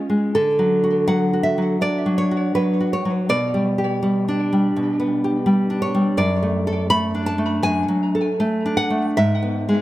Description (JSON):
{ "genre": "romantic piece for solo classical guitar", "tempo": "82 BPM", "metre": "4/4", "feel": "rubato", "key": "unclear", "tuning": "A4 = 440 Hz", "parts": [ { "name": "nylon-string guitar", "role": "solo", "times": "0.0-9.8 s", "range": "F#2 to B5", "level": "-17 LUFS", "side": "equal", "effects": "tape echo" } ], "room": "moderate recital hall reverb, RT60 1.4 s", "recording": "close, detailed microphones", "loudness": "-17 LUFS", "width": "side -15 dB against mid", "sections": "0.0-9.8 A section", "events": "none", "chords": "0.4 D; 3.3 G/B; 6.2 D/F#; 9.2 E/G#" }